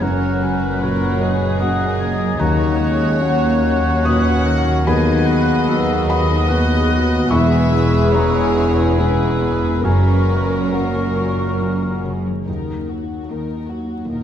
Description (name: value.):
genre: cinematic, emotional film score for orchestra.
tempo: 68-76 BPM.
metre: 3/4.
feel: rubato.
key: F# mixolydian.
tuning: A4 = 440 Hz.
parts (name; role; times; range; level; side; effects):
warm symphonic violin section; melody; 0.0-14.2 s; F#4 to A#4; -28 LUFS; left 3 dB; none.
concert flute; second line; 0.0-12.1 s; C#6 to G#6; -29 LUFS; left 1 dB; none.
mellow oboe; second line; 0.0-12.1 s; A#4 to D#5; -29 LUFS; right 2 dB; none.
warm clarinet; second line; 0.0-12.1 s; F#4 to D#5; -27 LUFS; equal; none.
warm symphonic violin section; second line; 0.0-12.1 s; A#4 to F#5; -27 LUFS; left 2 dB; none.
dark symphonic viola section; accompaniment; 0.0-14.2 s; D#3 to G#4; -25 LUFS; right 2 dB; none.
felt-muted upright piano; accompaniment; 0.0-14.2 s; E1 to D#6; -21 LUFS; left 1 dB; none.
warm French horn section; sustained chords; 0.0-12.1 s; A#2 to C#4; -26 LUFS; left 3 dB; none.
concert harp; arpeggios; 0.0-14.2 s; F#2 to A#5; -27 LUFS; left 6 dB; none.
dark symphonic double bass section; bass; 0.0-12.2 s; E1 to D#2; -22 LUFS; right 1 dB; none.
rich symphonic cello section; bass; 0.0-14.2 s; D#2 to F#2; -23 LUFS; right 2 dB; none.
room: wet scoring stage reverb, RT60 1.6 s.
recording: dark, warm production, vinyl crackle.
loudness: -15 LUFS.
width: side -9 dB against mid.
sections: 0.0-12.5 A section; 12.5-14.2 B section.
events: none.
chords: 0.0 F#; 2.4 D#m7; 4.9 B/D#; 7.3 E6; 9.9 F#; 12.5 D#m.